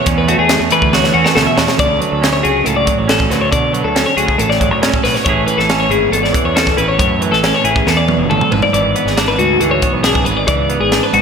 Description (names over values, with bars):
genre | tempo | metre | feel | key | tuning
math rock and midwest emo | 138 BPM | 4/4 | straight | unclear | A4 = 436 Hz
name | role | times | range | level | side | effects
semi-hollow electric guitar | accompaniment | 0.0-11.2 s | E2 to G#4 | -17 LUFS | right 7 dB | spring reverb, slapback echo
twelve-string electric guitar | arpeggios | 0.0-11.2 s | F#4 to E5 | -14 LUFS | left 4 dB | wide subtle chorus
fuzz fingered electric bass | bass | 0.1-11.2 s | G1 to B2 | -21 LUFS | equal | overdrive
crisp fusion drum kit | drums | 0.1-11.2 s | hi-hat, kick drum, snare drum, toms | -17 LUFS | equal | none
room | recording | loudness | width
wet concert hall reverb, RT60 2.2 s | big arena sound | -11 LUFS | side -6 dB against mid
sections
0.0-1.8 A section; 1.8-11.2 B section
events
drum fill 0.9-1.8, 7.9-8.7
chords
0.0 E13sus4; 1.8 Dmaj7; 5.3 Amaj7; 8.5 E7/G#